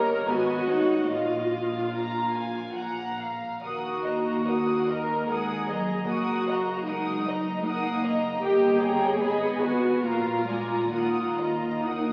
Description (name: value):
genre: classical, slow romantic movement for string orchestra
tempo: 65-79 BPM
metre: 3/4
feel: rubato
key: Eb minor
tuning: A4 = 440 Hz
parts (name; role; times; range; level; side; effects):
- warm symphonic violin section; melody; 0.0-12.1 s; F5 to Eb6; -36 LUFS; equal; none
- warm symphonic violin section; second line; 0.0-12.1 s; Ab4 to Bb5; -34 LUFS; equal; none
- dark symphonic viola section; accompaniment; 0.0-12.1 s; Eb4 to Bb4; -30 LUFS; equal; none
- dark studio double bass section; bass; 0.0-12.1 s; Gb1 to Eb2; -39 LUFS; equal; none
- warm symphonic cello section; bass; 0.0-12.1 s; Gb3 to Eb4; -34 LUFS; equal; none
room: wet recital hall reverb, RT60 1.9 s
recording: very old 78 rpm record, vinyl crackle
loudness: -27 LUFS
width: mono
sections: 0.0-12.1 A section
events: none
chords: 0.3 Abm; 1.1 Bbsus4; 2.8 Bb5; 3.6 Ebm; 6.1 Ebm/Gb; 8.4 Eb7/G; 9.2 Abm; 10.0 Bb7; 10.9 Ebm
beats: 0.29 | 1.12 1.94 2.77 | 3.64 4.49 5.30 | 6.10 6.88 7.66 | 8.43 9.21 10.05 | 10.94 11.85